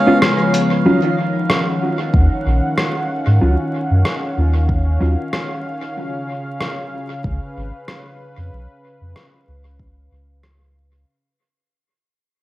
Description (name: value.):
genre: ambient dub.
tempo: 94 BPM.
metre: 4/4.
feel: swing 53% on 16ths.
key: Eb minor.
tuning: A4 = 441 Hz.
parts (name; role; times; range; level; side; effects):
warm analog pad; sustained chords; 0.0-11.1 s; Db3 to Gb5; -24 LUFS; equal; chorus, cassette tape.
vibraphone with hard mallets; arpeggios; 0.0-1.8 s; F3 to Ab3; -21 LUFS; left 3 dB; cassette tape, dub echo.
mellow electric guitar; stabs; 0.1-5.1 s; Gb3 to F4; -21 LUFS; right 1 dB; cassette tape, dub echo.
lo-fi sampler-style drum kit; drums; 0.2-10.6 s; hi-hat, rim click; -21 LUFS; equal; cassette tape, dub echo.
soft dub sub bass; bass; 2.1-11.0 s; Ab1 to Ab2; -16 LUFS; equal; tube saturation.
electronic kick drum; drums; 2.1-9.9 s; none; -18 LUFS; equal; cassette tape.
room: light reverb.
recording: home recording on cassette, vinyl crackle.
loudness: -16 LUFS.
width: side -16 dB against mid.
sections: 0.9-11.1 A section.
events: break 0.0-0.9; fade-out 0.9-11.1.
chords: 0.0 Db7; 0.9 Ebm9; 6.0 Db7.